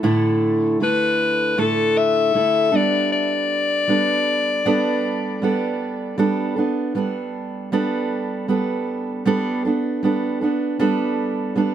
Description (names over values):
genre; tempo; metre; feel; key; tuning
pop; 78 BPM; 4/4; swing 55% on 16ths; unclear; A4 = 439 Hz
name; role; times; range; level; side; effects
fingerpicked steel-string acoustic guitar; accompaniment; 0.0-11.7 s; A2 to A4; -20 LUFS; right 2 dB; none
breathy alto saxophone; melody; 0.8-5.8 s; A4 to E5; -20 LUFS; left 5 dB; plate reverb, digital delay
room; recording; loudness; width
moderate studio reverb, RT60 0.7 s; none; -18 LUFS; side -10 dB against mid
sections
0.0-6.2 A section; 6.2-11.7 B section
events
none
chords
0.0 Dsus2/A; 2.7 Gadd9